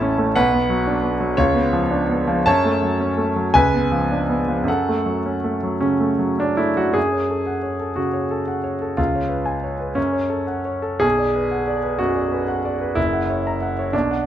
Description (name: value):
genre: classical, romantic character piece for solo piano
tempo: 50-64 BPM (dotted quarters)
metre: 6/8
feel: rubato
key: F# minor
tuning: A4 = 438 Hz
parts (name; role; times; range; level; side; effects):
- clear concert grand piano; solo; 0.0-14.3 s; F#1 to A#5; -18 LUFS; equal; none
room: moderate recital hall reverb, RT60 1.3 s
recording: close, detailed microphones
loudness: -18 LUFS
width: side -11 dB against mid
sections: 0.0-7.0 A section; 7.0-14.3 A section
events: none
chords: 0.3 Bm; 1.3 C#7b9; 2.4 F#m; 3.5 C#7b9; 4.7 F#m; 9.0 C#7; 10.0 F#m; 11.0 Bm; 13.0 F#7